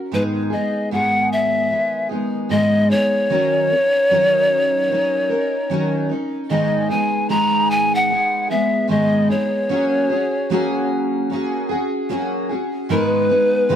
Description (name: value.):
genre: pop.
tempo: 75 BPM.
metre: 4/4.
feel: swing 60% on 16ths.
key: unclear.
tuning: A4 = 440 Hz.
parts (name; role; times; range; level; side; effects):
picked steel-string acoustic guitar; accompaniment; 0.0-13.8 s; G#2 to B4; -20 LUFS; equal; double-tracked left and right, slapback echo.
breathy pan flute; melody; 0.1-13.8 s; B4 to A#5; -18 LUFS; left 1 dB; none.
room: little or no reverb.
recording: recorded outdoors, with no room sound.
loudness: -16 LUFS.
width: side -9 dB against mid.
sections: 0.1-12.9 A section.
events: none.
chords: 0.1 G#m; 3.3 D#m7; 6.5 G#m; 9.7 F#add9; 12.9 G#m.